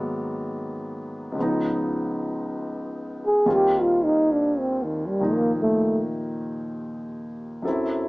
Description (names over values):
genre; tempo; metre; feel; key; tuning
jazz ballad; 57 BPM; 4/4; swing 67% on 8ths; unclear; A4 = 441 Hz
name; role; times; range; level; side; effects
warm concert grand piano; accompaniment; 0.0-8.1 s; C#2 to A4; -26 LUFS; equal; none
breathy trombone; melody; 3.3-6.0 s; Eb3 to G#4; -20 LUFS; equal; plate reverb
room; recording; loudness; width
light reverb; small speaker sound; -22 LUFS; side -23 dB against mid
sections
0.0-8.1 A section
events
trombone solo 0.0-8.1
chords
0.0 Abm7; 1.4 C#9; 3.5 Eb69